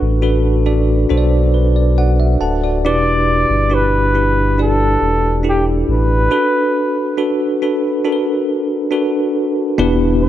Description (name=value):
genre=pop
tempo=69 BPM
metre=4/4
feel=straight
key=unclear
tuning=A4 = 440 Hz
part: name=warm flugelhorn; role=melody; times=0.0-10.3 s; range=F#4 to D5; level=-18 LUFS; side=equal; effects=none
part: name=bell-like tine electric piano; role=accompaniment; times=0.0-10.3 s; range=B2 to A5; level=-16 LUFS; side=equal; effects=fast stereo tremolo
part: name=sub bass with octave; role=bass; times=0.0-10.3 s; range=D1 to B1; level=-16 LUFS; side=equal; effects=none
part: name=shimmering ambient pad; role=sustained chords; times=10.1-10.3 s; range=D3 to E4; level=-33 LUFS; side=left 2 dB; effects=none
room=light reverb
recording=none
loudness=-13 LUFS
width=side -12 dB against mid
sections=0.0-9.8 A section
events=tine electric piano fill 1.1-2.8; break 6.3-9.8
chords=0.0 Bm7; 2.8 Em7; 6.3 Bm7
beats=0.23 1.10 1.97 | 2.84 3.71 4.58 5.45 | 6.32 7.18 8.05 8.92 | 9.79